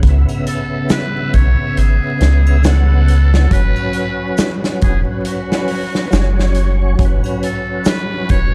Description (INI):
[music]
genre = trip hop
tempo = 69 BPM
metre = 4/4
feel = swing 59% on 16ths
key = unclear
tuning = A4 = 439 Hz
[part]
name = overdriven tonewheel organ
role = accompaniment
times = 0.0-8.5 s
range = C#3 to F#5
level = -23 LUFS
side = equal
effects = chorus vibrato, slow rotary speaker, tremolo
[part]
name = soft dub sub bass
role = bass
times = 0.0-8.5 s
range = E1 to C#2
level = -14 LUFS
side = equal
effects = none
[part]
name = big rock drum kit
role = drums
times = 0.0-8.5 s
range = hi-hat, kick drum, snare drum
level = -21 LUFS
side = equal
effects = none
[part]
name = triangle and tube shaker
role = percussion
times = 0.3-8.1 s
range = none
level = -40 LUFS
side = equal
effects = none
[part]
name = trumpet with metal mute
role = melody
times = 0.5-8.5 s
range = F#4 to C#5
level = -27 LUFS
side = equal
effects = tape echo
[sound]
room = little or no reverb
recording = dark, warm production, vinyl crackle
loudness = -15 LUFS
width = mono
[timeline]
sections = 0.0-8.5 A section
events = none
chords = 0.0 C#m7; 3.5 F#sus4